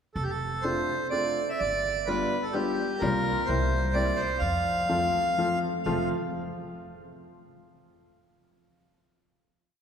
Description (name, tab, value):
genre	musette waltz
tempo	127 BPM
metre	3/4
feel	swing 54% on 8ths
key	F major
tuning	A4 = 439 Hz
part	accordion	melody	0.2-6.1 s	G4 to F5	-28 LUFS	right 1 dB	none
part	upright bass	bass	0.2-6.1 s	F1 to F2	-33 LUFS	equal	none
part	clear upright piano	accompaniment	0.6-6.1 s	F3 to F4	-30 LUFS	left 2 dB	none
room	wet church reverb, RT60 3.5 s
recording	recorded in a church or concert hall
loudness	-25 LUFS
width	side -7 dB against mid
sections	0.2-5.9 A section; 5.9-7.3 final chord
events	none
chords	0.2 F6; 1.6 G7; 3.0 C7sus4; 3.5 C7; 4.4 F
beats	| 0.16 0.64 1.12 | 1.60 2.07 2.55 | 3.02 3.48 3.95 | 4.42 4.90 5.38 | 5.87